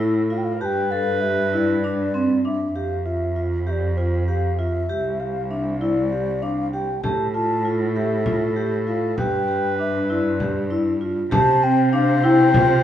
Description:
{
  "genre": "contemporary instrumental, chamber music in an uneven meter",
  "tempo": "196 BPM (eighths)",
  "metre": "7/8",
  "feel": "straight",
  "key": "unclear",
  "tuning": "A4 = 440 Hz",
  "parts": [
    { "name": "warm clarinet", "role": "second line", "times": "0.0-2.4, 7.0-12.8 s", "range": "A4 to C5", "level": "-26 LUFS", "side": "left 1 dB", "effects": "none" },
    { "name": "vibraphone with medium hard mallets", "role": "arpeggios", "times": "0.0-12.7 s", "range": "C4 to A4", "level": "-22 LUFS", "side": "equal", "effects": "none" },
    { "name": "clear cello", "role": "bass", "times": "0.0-12.8 s", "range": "C2 to C3", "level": "-25 LUFS", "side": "right 1 dB", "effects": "none" },
    { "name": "mellow hollow wooden flute", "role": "melody", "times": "0.3-12.8 s", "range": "C5 to A5", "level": "-25 LUFS", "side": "left 2 dB", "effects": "none" },
    { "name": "frame drum", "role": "percussion", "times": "7.0-12.8 s", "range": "none", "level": "-24 LUFS", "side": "left 1 dB", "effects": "none" }
  ],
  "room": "wet studio reverb, RT60 0.9 s",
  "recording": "heard from further back in the room, nothing above 11.0 kHz",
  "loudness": "-19 LUFS",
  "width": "side -10 dB against mid",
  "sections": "0.0-2.8 A section; 2.8-11.3 B section; 11.3-12.8 C section",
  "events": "none",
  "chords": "0.0 A5; 0.6 G; 2.8 Dmadd9/F (rootless); 4.9 Cadd9; 7.0 A5; 9.2 G; 11.3 C",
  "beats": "0.00 0.31 | 0.61 0.92 1.23 1.53 1.84 2.14 2.45 | 2.75 3.06 3.37 3.67 3.98 4.28 4.59 | 4.89 5.20 5.51 5.81 6.12 6.42 6.73 | 7.04 7.34 7.65 7.96 8.26 8.57 8.87 | 9.18 9.48 9.79 10.10 10.40 10.71 11.01 | 11.32 11.62 11.93 12.24 12.54"
}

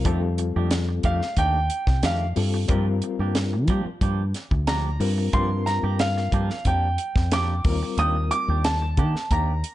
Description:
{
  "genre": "electric jazz fusion",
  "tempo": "91 BPM",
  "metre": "4/4",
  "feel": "straight",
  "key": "G minor",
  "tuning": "A4 = 437 Hz",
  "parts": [
    { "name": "overdriven reed electric piano", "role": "accompaniment", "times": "0.0-8.8 s", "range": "G3 to Bb4", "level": "-30 LUFS", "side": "left 7 dB", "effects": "fast tremolo" },
    { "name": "woody fretless electric bass", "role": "bass", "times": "0.0-9.6 s", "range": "C2 to G3", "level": "-24 LUFS", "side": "equal", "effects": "none" },
    { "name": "clean electric guitar", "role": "stabs", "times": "0.1-9.5 s", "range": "Eb3 to G4", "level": "-33 LUFS", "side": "right 6 dB", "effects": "lush chorus" },
    { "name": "tight funk drum kit", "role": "drums", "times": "0.1-9.7 s", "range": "hi-hat, kick drum, snare drum", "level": "-26 LUFS", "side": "equal", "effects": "none" },
    { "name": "clear grand piano", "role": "melody", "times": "1.1-9.7 s", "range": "F5 to Eb6", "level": "-27 LUFS", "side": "right 1 dB", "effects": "none" }
  ],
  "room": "light reverb",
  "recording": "dark, warm production, nothing above 10.8 kHz",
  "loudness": "-21 LUFS",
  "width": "side -14 dB against mid",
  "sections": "0.0-9.7 A section",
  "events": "grand piano solo 0.0-9.7",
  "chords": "0.1 F13; 2.7 Gm7; 7.7 Ebmaj7",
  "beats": "| 0.05 0.71 1.38 2.04 | 2.70 3.36 4.02 4.68 | 5.34 6.00 6.66 7.32 | 7.98 8.64 9.31"
}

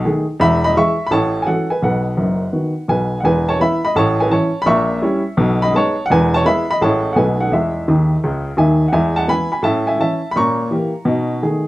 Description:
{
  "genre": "jazz, stride piano",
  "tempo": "169 BPM",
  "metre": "4/4",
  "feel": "swing 66% on 8ths",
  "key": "E major",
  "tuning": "A4 = 440 Hz",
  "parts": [
    { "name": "warm upright piano", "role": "solo", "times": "0.0-11.6 s", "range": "E1 to C#6", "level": "-14 LUFS", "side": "equal", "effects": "none" }
  ],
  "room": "moderate studio reverb, RT60 0.6 s",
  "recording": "none",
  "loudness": "-14 LUFS",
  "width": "side -17 dB against mid",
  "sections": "0.0-8.9 A section; 8.9-11.7 A section",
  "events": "upright piano fill 7.9-8.9",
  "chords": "0.4 E; 1.1 A6; 1.8 B; 3.2 E5; 3.9 A; 4.7 A#dim7; 5.4 B69; 6.1 E; 6.8 Amaj7; 7.2 B7; 7.5 E; 9.6 A; 10.4 A#dim7; 11.1 B6",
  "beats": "0.04 | 0.40 0.75 1.10 1.46 | 1.82 2.17 2.53 2.88 | 3.24 3.59 3.95 4.30 | 4.66 5.01 5.37 5.73 | 6.08 6.44 6.80 7.15 | 7.51 7.86 8.22 8.58 | 8.93 9.29 9.64 10.00 | 10.36 10.71 11.07 11.43"
}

